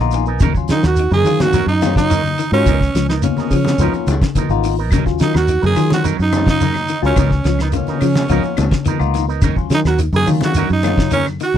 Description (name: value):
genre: afrobeat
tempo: 106 BPM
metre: 4/4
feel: straight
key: Eb minor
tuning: A4 = 440 Hz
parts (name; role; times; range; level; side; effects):
- barky tine electric piano; accompaniment; 0.0-11.6 s; Gb3 to Ab5; -22 LUFS; left 20 dB; overdrive, phaser
- clean electric guitar; arpeggios; 0.0-11.6 s; Db3 to Gb3; -24 LUFS; left 11 dB; none
- electric guitar with an envelope filter; stabs; 0.0-11.4 s; F3 to Bb4; -25 LUFS; right 12 dB; none
- fingered electric bass; bass; 0.0-11.6 s; Ab1 to Eb3; -18 LUFS; equal; none
- damped 70s drum kit; drums; 0.1-11.5 s; hi-hat, kick drum, snare drum; -18 LUFS; right 1 dB; none
- shekere; percussion; 0.1-11.6 s; none; -24 LUFS; right 2 dB; none
- congas; percussion; 0.4-11.3 s; none; -24 LUFS; left 5 dB; none
- breathy tenor saxophone; melody; 0.7-11.6 s; Db4 to Ab4; -20 LUFS; right 4 dB; none
- clear trombone; second line; 0.7-11.6 s; Db4 to Ab4; -25 LUFS; right 6 dB; none
- claves; percussion; 4.9-11.4 s; none; -35 LUFS; left 22 dB; none
room: little or no reverb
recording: dry, close 1970s-style studio recording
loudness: -13 LUFS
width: side -10 dB against mid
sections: 0.0-11.6 A section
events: tine electric piano fill 0.0-0.4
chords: 0.4 Ebm7; 2.7 Db13; 4.9 Ebm7; 7.2 Db13; 9.4 Ebm7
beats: | 0.41 0.97 1.54 2.10 | 2.67 3.23 3.79 4.36 | 4.92 5.48 6.05 6.61 | 7.18 7.74 8.30 8.87 | 9.43 9.99 10.56 11.12